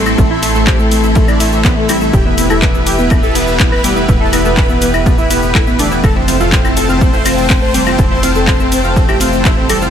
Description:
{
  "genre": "melodic techno",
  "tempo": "123 BPM",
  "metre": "4/4",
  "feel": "straight",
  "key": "unclear",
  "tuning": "A4 = 438 Hz",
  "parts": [
    { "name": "wide unison lead", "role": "melody", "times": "0.0-9.9 s", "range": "A3 to C5", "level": "-17 LUFS", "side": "right 1 dB", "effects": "sidechain pumping, tape echo" },
    { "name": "soft supersaw", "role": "second line", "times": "0.0-9.9 s", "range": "A4 to C6", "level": "-24 LUFS", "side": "right 1 dB", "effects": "sidechain pumping, diffuse ambient delay" },
    { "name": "sweeping resonant pad", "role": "sustained chords", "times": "0.0-9.9 s", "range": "E3 to A5", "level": "-20 LUFS", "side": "left 1 dB", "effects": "chorus, sidechain pumping" },
    { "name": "analog pluck", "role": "arpeggios", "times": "0.0-9.9 s", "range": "E3 to F5", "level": "-20 LUFS", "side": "equal", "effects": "ensemble chorus, sidechain pumping, diffuse ambient delay" },
    { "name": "tight sequencer bass", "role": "bass", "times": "0.0-9.9 s", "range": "E1 to A1", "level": "-18 LUFS", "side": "equal", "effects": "sidechain pumping" },
    { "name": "analog drone", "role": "drone", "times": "0.0-9.9 s", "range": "A2 to E3", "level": "-26 LUFS", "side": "left 1 dB", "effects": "none" },
    { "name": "rich studio string section", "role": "texture", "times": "0.0-9.9 s", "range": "E4 to C6", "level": "-22 LUFS", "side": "left 3 dB", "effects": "sidechain pumping" },
    { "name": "house drum kit", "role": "drums", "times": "0.1-9.9 s", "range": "claves, handclaps, hi-hat, ride cymbal, shaker", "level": "-19 LUFS", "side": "left 2 dB", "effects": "sidechain pumping on hats, small room ambience, sidechain pumping on perc, sidechain pumping on cymbals" },
    { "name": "cloth-damped thuddy drum kit", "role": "drums", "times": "0.2-9.8 s", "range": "hi-hat, ride cymbal, snare drum", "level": "-30 LUFS", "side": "left 2 dB", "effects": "none" },
    { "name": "electronic kick drum", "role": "drums", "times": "0.2-9.5 s", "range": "none", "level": "-13 LUFS", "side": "equal", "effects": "small room ambience" }
  ],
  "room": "moderate lush hall reverb, RT60 2.5 s",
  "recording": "dreamy mix soaked in reverb",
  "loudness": "-9 LUFS",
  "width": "side -8 dB against mid",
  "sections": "0.0-9.9 A section",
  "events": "none",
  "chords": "0.0 Am; 2.1 Em; 6.0 F"
}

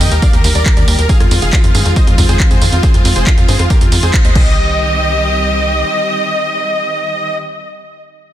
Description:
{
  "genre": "uplifting trance",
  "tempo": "138 BPM",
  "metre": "4/4",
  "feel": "straight",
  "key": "C minor",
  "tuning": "A4 = 440 Hz",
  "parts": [
    { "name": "dense compressed supersaw", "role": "melody", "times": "0.0-7.3 s", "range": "F4 to G5", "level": "-17 LUFS", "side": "equal", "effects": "sidechain pumping, ping-pong delay" },
    { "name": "bright studio string section", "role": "sustained chords", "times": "0.0-7.3 s", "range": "Eb3 to G4", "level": "-21 LUFS", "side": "equal", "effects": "sidechain pumping" },
    { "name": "tight sequencer bass", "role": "bass", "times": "0.0-5.8 s", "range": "F1 to G2", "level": "-14 LUFS", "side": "equal", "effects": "sidechain pumping" },
    { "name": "punchy analog drum machine", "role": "drums", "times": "0.0-4.4 s", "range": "crash cymbal, handclaps, hi-hat, rim click, tambourine", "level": "-19 LUFS", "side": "right 2 dB", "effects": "none" },
    { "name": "electronic kick drum", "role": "drums", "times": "0.2-4.4 s", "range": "none", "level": "-11 LUFS", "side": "equal", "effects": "none" }
  ],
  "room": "light reverb",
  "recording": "dense, heavily limited modern master",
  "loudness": "-10 LUFS",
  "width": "side -12 dB against mid",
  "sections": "0.0-4.6 A section; 4.6-8.1 B section",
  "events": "drop 0.0-4.6; band accent 4.1",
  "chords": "0.0 Eb; 1.1 Fm7; 4.4 Cm"
}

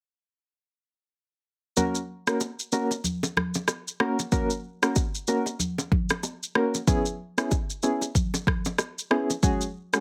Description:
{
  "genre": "afrobeats",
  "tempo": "94 BPM",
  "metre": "4/4",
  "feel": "swing 58% on 16ths",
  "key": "F# mixolydian",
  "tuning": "A4 = 440 Hz",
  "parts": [
    { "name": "soft electric-piano-like synth keys", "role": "accompaniment", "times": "1.8-10.0 s", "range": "G#3 to A#4", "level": "-28 LUFS", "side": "equal", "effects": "chorus, tremolo" },
    { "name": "afro-pop drum kit", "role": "drums", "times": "1.8-10.0 s", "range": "kick drum, rim click, shaker", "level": "-28 LUFS", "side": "equal", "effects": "none" },
    { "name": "congas and bongos", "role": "percussion", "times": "1.8-9.6 s", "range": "none", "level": "-34 LUFS", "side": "equal", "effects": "none" }
  ],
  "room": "moderate small room reverb, RT60 0.5 s",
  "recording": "heavily compressed radio sound, multiband compression",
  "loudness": "-27 LUFS",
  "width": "mono",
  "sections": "1.8-10.0 A section",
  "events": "none",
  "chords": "1.8 F#; 6.9 E6; 9.4 C#sus4"
}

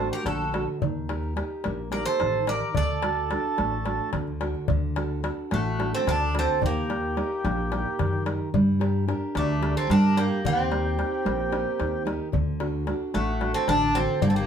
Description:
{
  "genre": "greek folk, Greek bouzouki band",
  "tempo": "219 BPM (eighths)",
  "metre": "7/8",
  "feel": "straight",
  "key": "D phrygian dominant",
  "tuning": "A4 = 440 Hz",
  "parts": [
    { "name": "Greek bouzouki", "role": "melody", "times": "0.0-14.5 s", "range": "A3 to D5", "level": "-28 LUFS", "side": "right 1 dB", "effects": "none" },
    { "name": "mellow accordion", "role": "second line", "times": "0.0-14.5 s", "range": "D4 to Bb4", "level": "-30 LUFS", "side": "right 2 dB", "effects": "none" },
    { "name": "fingerpicked steel-string acoustic guitar", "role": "accompaniment", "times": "0.0-14.5 s", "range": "D3 to Bb4", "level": "-28 LUFS", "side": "right 2 dB", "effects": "none" },
    { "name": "upright bass", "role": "bass", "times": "0.0-14.5 s", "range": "G1 to G2", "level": "-29 LUFS", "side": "left 1 dB", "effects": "none" },
    { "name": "darbuka", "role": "percussion", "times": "0.1-14.3 s", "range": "none", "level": "-31 LUFS", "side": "left 2 dB", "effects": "none" }
  ],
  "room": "wet studio reverb, RT60 0.6 s",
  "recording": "heard from further back in the room",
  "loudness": "-23 LUFS",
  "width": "side -8 dB against mid",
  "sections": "0.0-4.7 A section; 4.7-14.5 B section",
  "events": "speeding up 0.0-14.5",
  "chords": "0.0 D; 0.8 Eb; 2.8 D; 6.6 Eb; 8.5 Gm; 10.4 Eb; 12.3 D"
}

